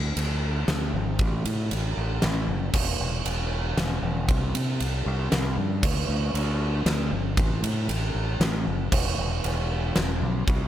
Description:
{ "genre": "post-rock", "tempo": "116 BPM", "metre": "3/4", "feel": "straight", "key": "E minor", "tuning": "A4 = 438 Hz", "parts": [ { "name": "growling fingered electric bass", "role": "bass", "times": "0.0-10.7 s", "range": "E1 to C3", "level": "-26 LUFS", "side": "equal", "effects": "overdrive" }, { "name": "huge arena drum kit", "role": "drums", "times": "0.2-10.6 s", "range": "crash cymbal, kick drum, ride cymbal, snare drum", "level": "-26 LUFS", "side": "equal", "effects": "none" } ], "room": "little or no reverb", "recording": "none", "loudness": "-23 LUFS", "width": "side -11 dB against mid", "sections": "0.0-10.7 A section", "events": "none", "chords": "none" }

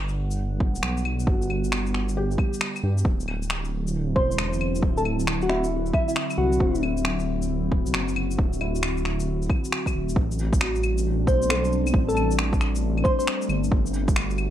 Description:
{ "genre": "future garage", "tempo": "135 BPM", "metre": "4/4", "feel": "swing 65% on 16ths", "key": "A dorian", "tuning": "A4 = 440 Hz", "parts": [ { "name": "warbly tape-like pad", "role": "sustained chords", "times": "0.2-14.5 s", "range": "D3 to F#5", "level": "-30 LUFS", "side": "equal", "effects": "chorus, built-in reverb, sidechain pumping" }, { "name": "dark detuned saw bass", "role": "bass", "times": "0.0-14.5 s", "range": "D1 to G2", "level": "-26 LUFS", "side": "equal", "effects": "sidechain pumping" }, { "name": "electronic shaker, finger snaps, claves and cabasa", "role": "drums", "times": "0.1-14.5 s", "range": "none", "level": "-29 LUFS", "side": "left 1 dB", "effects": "overdrive" }, { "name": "electronic kick drum", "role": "drums", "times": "0.6-14.1 s", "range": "none", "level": "-23 LUFS", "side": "equal", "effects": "overdrive" }, { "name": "felt-muted upright piano", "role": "accompaniment", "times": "1.3-13.7 s", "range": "C4 to A4", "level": "-34 LUFS", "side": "left 1 dB", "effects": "sidechain pumping, digital delay" }, { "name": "soft struck synth lead", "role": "melody", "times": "4.2-6.8, 11.3-13.2 s", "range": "E4 to C5", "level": "-26 LUFS", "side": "left 1 dB", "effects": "chorus, digital delay" } ], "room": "light reverb, digital ambience", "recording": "bright 1980s-style digital production", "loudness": "-22 LUFS", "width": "side -11 dB against mid", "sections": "0.0-10.2 A section; 10.2-14.5 B section", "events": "none", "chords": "0.0 Gmaj7; 3.1 D9; 10.2 Am11; 13.7 Gmaj7(no3)" }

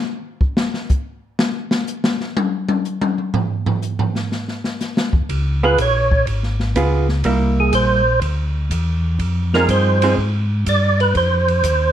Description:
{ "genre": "soul jazz organ trio", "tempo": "123 BPM", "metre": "4/4", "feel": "swing 68% on 8ths", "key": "unclear", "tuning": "A4 = 440 Hz", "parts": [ { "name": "open jazz drum kit", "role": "drums", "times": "0.4-11.8 s", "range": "hi-hat, kick drum, ride cymbal, snare drum, toms", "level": "-21 LUFS", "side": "left 1 dB", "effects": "none" }, { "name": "mellow tonewheel organ", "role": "bass", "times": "5.1-11.9 s", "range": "Ab1 to Ab2", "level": "-18 LUFS", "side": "equal", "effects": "chorus vibrato, slow rotary speaker" }, { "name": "vintage hollow-body jazz guitar", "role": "accompaniment", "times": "5.6-10.2 s", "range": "F3 to Ab4", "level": "-20 LUFS", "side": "right 3 dB", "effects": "none" }, { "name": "percussive tonewheel organ", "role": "melody", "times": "5.7-11.9 s", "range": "Ab4 to D5", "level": "-17 LUFS", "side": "right 2 dB", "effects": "slow rotary speaker, chorus vibrato" } ], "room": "light reverb", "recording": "dark, warm production", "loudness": "-16 LUFS", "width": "side -10 dB against mid", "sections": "0.0-11.9 A section", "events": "tonewheel organ solo 0.0-11.9; drum solo 0.0-5.3", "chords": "0.0 N.C.; 5.3 Db7; 7.3 C7; 9.2 Fm7" }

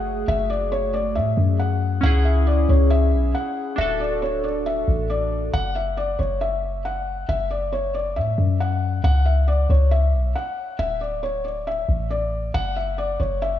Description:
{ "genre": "hip hop, trap", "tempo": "137 BPM", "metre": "4/4", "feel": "half-time", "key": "unclear", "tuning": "A4 = 440 Hz", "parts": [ { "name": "felt-muted upright piano", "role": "melody", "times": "0.0-13.6 s", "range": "C#5 to F#5", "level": "-25 LUFS", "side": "left 2 dB", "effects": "low-pass filter, analog delay" }, { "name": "glassy digital keys", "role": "accompaniment", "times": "0.0-5.6 s", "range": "A3 to A4", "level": "-26 LUFS", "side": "right 1 dB", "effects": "chorus, low-pass filter" }, { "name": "warm 808-style bass", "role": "bass", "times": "0.0-13.6 s", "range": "D1 to A2", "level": "-21 LUFS", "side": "left 1 dB", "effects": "none" } ], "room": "light reverb, small room ambience", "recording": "none", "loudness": "-19 LUFS", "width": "side -11 dB against mid", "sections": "0.0-5.5 A section; 5.5-13.6 B section", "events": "none", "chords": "0.0 F#madd9; 2.0 C#m; 3.8 D; 5.5 N.C.; 9.0 C#m; 10.8 D5; 12.5 N.C." }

